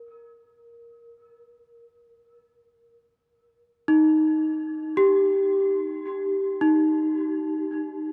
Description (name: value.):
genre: ambient.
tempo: free time.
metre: none.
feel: none.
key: unclear.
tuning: A4 = 440 Hz.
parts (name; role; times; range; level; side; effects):
large celesta; solo; 0.0-8.1 s; Eb4 to Bb4; -23 LUFS; equal; diffuse ambient delay.
room: wet huge ambient reverb, RT60 8.1 s.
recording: none.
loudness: -23 LUFS.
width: mono.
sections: 0.0-8.1 A section.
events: none.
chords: 0.0 Bb5; 3.4 Eb.